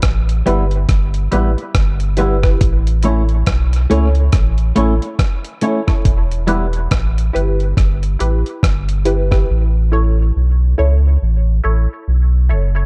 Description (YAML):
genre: dub reggae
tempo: 70 BPM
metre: 4/4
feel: swing 59% on 16ths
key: E dorian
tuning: A4 = 440 Hz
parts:
  - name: warm sub bass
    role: bass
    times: 0.0-12.9 s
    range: E1 to C#2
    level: -17 LUFS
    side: equal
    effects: none
  - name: dusty soul sampler-style drum kit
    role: drums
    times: 0.0-9.5 s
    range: hi-hat, kick drum, rim click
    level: -18 LUFS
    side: equal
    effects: none
  - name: clean electric guitar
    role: accompaniment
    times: 0.5-6.7 s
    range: G3 to E4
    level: -23 LUFS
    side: equal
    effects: high-pass filter, dub echo
  - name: filtered dub chord stab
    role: stabs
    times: 0.5-12.9 s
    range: E4 to C#5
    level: -25 LUFS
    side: equal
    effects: phaser, high-pass filter, dub echo
room: little or no reverb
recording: dark, warm production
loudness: -15 LUFS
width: mono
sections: 0.0-12.9 A section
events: part muted 9.5-12.9; filter sweep 9.5-12.9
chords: 0.0 Em; 2.6 A; 6.1 Em; 9.5 A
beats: 0.03 0.89 1.75 | 2.61 3.47 4.33 5.19 | 6.05 6.91 7.77 8.63 | 9.49 10.35 11.21 12.07